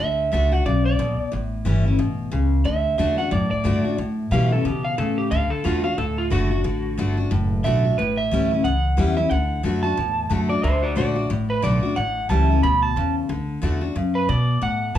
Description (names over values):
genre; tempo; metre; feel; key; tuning
rockabilly; 180 BPM; 4/4; swing 59% on 8ths; D major; A4 = 436 Hz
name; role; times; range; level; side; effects
electric guitar through a small old amp; melody; 0.0-15.0 s; F4 to B5; -24 LUFS; right 2 dB; none
picked steel-string acoustic guitar; accompaniment; 0.0-15.0 s; E2 to F#4; -24 LUFS; left 4 dB; none
upright bass; bass; 0.0-15.0 s; F#1 to C#3; -22 LUFS; right 1 dB; none
room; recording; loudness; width
moderate large studio reverb, RT60 0.8 s; band playing live in one room; -19 LUFS; side -11 dB against mid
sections
0.0-10.6 A section; 10.6-15.0 A section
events
clean electric guitar solo 0.0-15.0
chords
0.0 D; 1.3 A7; 2.7 D; 4.0 A7; 5.3 D; 8.0 A7; 9.3 D; 12.0 A7; 13.3 D